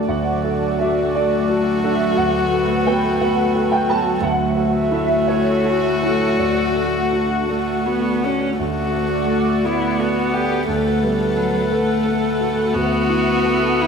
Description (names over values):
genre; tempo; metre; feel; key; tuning
neoclassical piano and strings; 53-59 BPM (dotted quarters); 6/8; rubato; D major; A4 = 439 Hz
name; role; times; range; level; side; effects
dark concert grand piano; accompaniment; 0.0-13.9 s; D2 to A5; -21 LUFS; right 2 dB; ensemble chorus
warm analog pad; sustained chords; 0.0-13.9 s; F#3 to F#5; -23 LUFS; left 1 dB; chorus
dark violin; melody; 0.1-13.9 s; E4 to A4; -22 LUFS; left 6 dB; analog delay
warm viola; accompaniment; 0.1-13.9 s; F#3 to C#4; -23 LUFS; right 3 dB; none
room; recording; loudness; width
wet plate reverb, RT60 2.6 s; dreamy mix soaked in reverb; -16 LUFS; side -6 dB against mid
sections
0.0-8.6 A section; 8.6-13.9 B section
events
none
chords
0.0 D; 2.2 Bm7/D; 4.2 F#m7/D; 6.4 D; 10.7 Bm7/D; 12.7 F#m7/D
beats
| 0.08 1.14 | 2.18 3.21 | 4.23 5.28 | 6.38 7.49 | 8.60 9.65 | 10.69 11.72 | 12.75 13.81